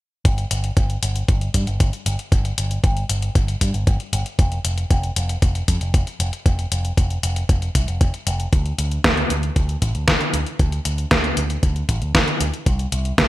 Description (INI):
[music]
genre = italo disco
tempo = 116 BPM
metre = 4/4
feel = straight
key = unclear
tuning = A4 = 440 Hz
[part]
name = detuned 8-bit digital drum machine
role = drums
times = 0.2-13.3 s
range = hi-hat, snare drum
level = -23 LUFS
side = left 1 dB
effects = gated reverb
[part]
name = picked electric bass with an envelope filter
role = bass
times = 0.3-13.3 s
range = F1 to G2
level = -22 LUFS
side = equal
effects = low-pass filter
[part]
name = electronic kick drum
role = drums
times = 0.3-13.3 s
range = none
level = -18 LUFS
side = equal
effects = none
[sound]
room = little or no reverb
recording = bright 1980s-style digital production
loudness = -18 LUFS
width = side -16 dB against mid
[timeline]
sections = 0.2-13.3 A section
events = filter sweep on picked electric bass 0.2-13.3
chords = none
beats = | 0.25 0.77 1.28 1.80 | 2.32 2.84 3.35 3.87 | 4.39 4.91 5.42 5.94 | 6.46 6.97 7.49 8.01 | 8.53 9.04 9.56 10.08 | 10.60 11.11 11.63 12.15 | 12.66 13.18